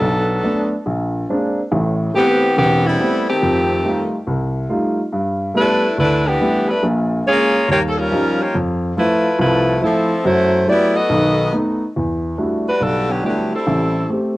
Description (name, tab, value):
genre	jazz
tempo	140 BPM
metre	4/4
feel	swing 65% on 8ths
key	E minor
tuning	A4 = 440 Hz
part	edgy saxophone section	melody	0.0-14.1 s	D3 to D#5	-16 LUFS	equal	cassette tape
part	warm upright piano	accompaniment	0.0-14.4 s	E1 to G4	-18 LUFS	equal	cassette tape
room	moderate spring reverb, RT60 1.3 s, small room ambience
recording	home recording on cassette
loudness	-15 LUFS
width	side -18 dB against mid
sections	0.0-12.0 A section; 12.0-14.4 B section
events	none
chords	0.0 Bm7; 0.8 A#9; 1.7 Am9; 3.4 F9; 5.1 G69; 6.8 A#m7; 7.7 D#9; 8.5 Fmaj7; 10.2 F#m7b5; 11.1 B7; 12.0 Em11; 13.7 Am7